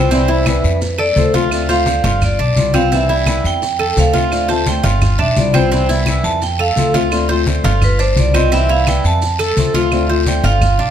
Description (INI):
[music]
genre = latin, Cuban son and guajira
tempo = 171 BPM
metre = 4/4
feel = straight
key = C major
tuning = A4 = 440 Hz
[part]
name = vibraphone with hard mallets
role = melody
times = 0.0-10.9 s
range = B4 to A5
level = -18 LUFS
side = right 2 dB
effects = none
[part]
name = flamenco guitar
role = accompaniment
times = 0.0-10.7 s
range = C3 to F4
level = -20 LUFS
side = left 5 dB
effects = none
[part]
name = Cuban tres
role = arpeggios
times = 0.0-10.9 s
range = C4 to C5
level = -20 LUFS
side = right 2 dB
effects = none
[part]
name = upright bass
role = bass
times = 0.0-10.9 s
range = G1 to F2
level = -17 LUFS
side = right 1 dB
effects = none
[part]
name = congas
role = percussion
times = 0.1-10.9 s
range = none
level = -20 LUFS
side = left 2 dB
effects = none
[part]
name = guiro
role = percussion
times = 0.1-10.9 s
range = none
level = -28 LUFS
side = left 5 dB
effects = none
[part]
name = maracas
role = percussion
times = 0.1-10.8 s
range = none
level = -30 LUFS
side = right 4 dB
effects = none
[part]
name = claves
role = percussion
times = 0.5-10.8 s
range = none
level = -28 LUFS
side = right 7 dB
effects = none
[sound]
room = moderate large studio reverb, RT60 1.3 s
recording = close, detailed microphones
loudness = -12 LUFS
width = side -9 dB against mid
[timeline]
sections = 0.0-10.9 A section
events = vibraphone solo 0.0-10.9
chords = 0.1 Cmaj7; 0.8 F; 1.5 Dm7; 2.2 G7; 2.9 Cmaj7; 3.6 F; 4.3 Dm7; 5.0 G7; 5.7 Cmaj7; 6.4 F; 7.1 Dm7; 7.8 G7; 8.5 Cmaj7; 9.2 F; 9.9 Dm7